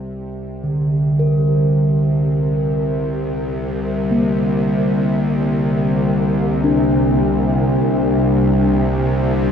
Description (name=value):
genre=dark ambient drone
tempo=free time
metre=none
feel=none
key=unclear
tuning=A4 = 440 Hz
part: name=bowed-like drone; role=drone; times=0.0-9.5 s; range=C2 to C3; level=-18 LUFS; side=equal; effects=built-in reverb
part: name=bronze singing bowl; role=arpeggios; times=0.6-9.5 s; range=D3 to Bb4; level=-18 LUFS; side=left 1 dB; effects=tape echo
room=wet cathedral reverb, RT60 5.3 s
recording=none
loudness=-15 LUFS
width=side -8 dB against mid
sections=0.0-9.5 A section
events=fade-in on synth drone 0.0-9.5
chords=0.0 Bbadd9/C